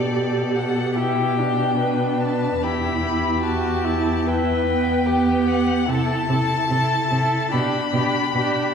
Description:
classical, slow romantic movement for string quartet; 73 BPM; 4/4; rubato; G major; A4 = 440 Hz
rich violin; melody; 0.0-8.7 s; D5 to B5; -25 LUFS; left 4 dB
rich violin; second line; 0.0-8.7 s; G4 to B4; -26 LUFS; left 3 dB
warm viola; accompaniment; 0.0-8.7 s; B3 to G4; -24 LUFS; right 3 dB
rich cello; bass; 0.0-8.4 s; E2 to C3; -23 LUFS; right 1 dB
wet concert hall reverb, RT60 2.1 s; heard from further back in the room; -18 LUFS; side -7 dB against mid
0.0-8.7 A section
0.0 G/B; 2.6 Em; 5.9 Am/C; 7.5 G
0.11 0.96 1.79 | 2.62 3.44 4.26 5.07 | 5.88 6.70 7.53 8.35

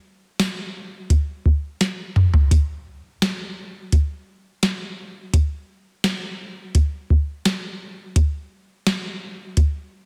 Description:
dream pop; 85 BPM; 4/4; straight
soft vintage rhythm box; drums; 0.4-9.7 s; hi-hat, kick drum, snare drum, tambourine, toms; -21 LUFS; equal; overdrive
light reverb; dense, heavily limited modern master; -22 LUFS; mono
0.0-2.5 A section; 2.5-10.1 B section
drum fill 1.8-2.5
0.40 1.10 1.81 | 2.51 3.22 3.92 4.63 | 5.34 6.04 6.75 7.45 | 8.16 8.87 9.57

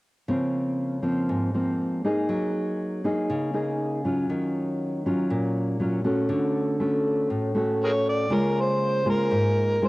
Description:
bossa nova; 120 BPM; 4/4; straight; Db major; A4 = 440 Hz
nylon-string guitar; accompaniment; 0.3-9.9 s; Ab2 to Ab4; -23 LUFS; equal; cassette tape
overdriven harmonica; melody; 7.8-9.9 s; Ab4 to D5; -24 LUFS; equal
light reverb, studio reverb; home recording on cassette; -23 LUFS; side -20 dB against mid
0.3-8.3 A section; 8.3-9.9 B section
0.3 Dbmaj13; 2.3 Gb69; 4.3 Ebm9; 6.3 Dmaj7; 8.3 Db6
| 0.29 0.79 1.29 1.79 | 2.30 2.80 3.30 3.80 | 4.30 4.80 5.30 5.80 | 6.31 6.81 7.31 7.81 | 8.31 8.81 9.31 9.81

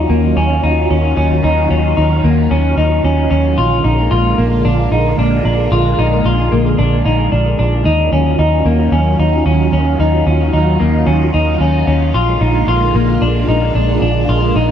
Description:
dream pop; 112 BPM; 4/4; straight; Eb minor; A4 = 440 Hz
phased string machine; sustained chords; 0.0-14.7 s; D3 to F4; -18 LUFS; right 2 dB; ensemble chorus, phaser
semi-hollow electric guitar; arpeggios; 0.0-14.7 s; Bb3 to F4; -16 LUFS; left 2 dB; wide subtle chorus, ping-pong delay
vintage muted fingered electric bass; bass; 0.0-14.7 s; Bb1 to Eb2; -14 LUFS; equal
moderate huge ambient reverb, RT60 3.9 s; dark, warm production; -11 LUFS; side -9 dB against mid
0.0-14.7 A section
0.0 Ebm9; 3.6 Bb7; 7.9 Ebm9; 12.2 Bb7
0.36 0.90 | 1.44 1.97 2.51 3.04 | 3.58 4.11 4.65 5.19 | 5.72 6.26 6.79 7.33 | 7.86 8.40 8.94 9.47 | 10.01 10.54 11.08 11.61 | 12.15 12.69 13.22 13.76 | 14.29

